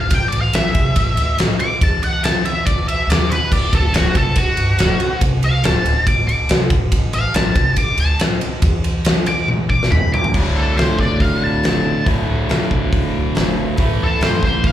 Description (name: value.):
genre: blues rock power trio and southern rock.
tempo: 141 BPM.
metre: 4/4.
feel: straight.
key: D major.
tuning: A4 = 441 Hz.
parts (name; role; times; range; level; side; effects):
octave-fuzz lead guitar; melody; 0.0-14.7 s; F#4 to D6; -20 LUFS; left 1 dB; wah, distortion, slapback echo.
upright bass; bass; 0.0-14.7 s; D1 to G2; -21 LUFS; equal; none.
huge arena drum kit; drums; 0.1-14.7 s; crash cymbal, hi-hat, kick drum, ride cymbal, snare drum, toms; -17 LUFS; equal; none.
sludgy distorted guitar; riff; 10.3-14.7 s; D2 to A3; -19 LUFS; equal; overdrive, slapback echo.
room: light reverb.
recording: live gig heard through the venue's PA, club reverb.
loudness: -14 LUFS.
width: side -12 dB against mid.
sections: 0.0-10.3 A section; 10.3-14.7 B section.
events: lead electric guitar solo 0.0-10.3; drum fill 9.5-10.3.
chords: 0.1 A5; 1.8 Esus4; 3.1 B/D#; 3.5 D; 5.2 Csus4; 5.6 D5; 6.9 N.C.; 8.6 Dsus2/E; 9.9 B/D#; 10.3 D; 13.8 A5.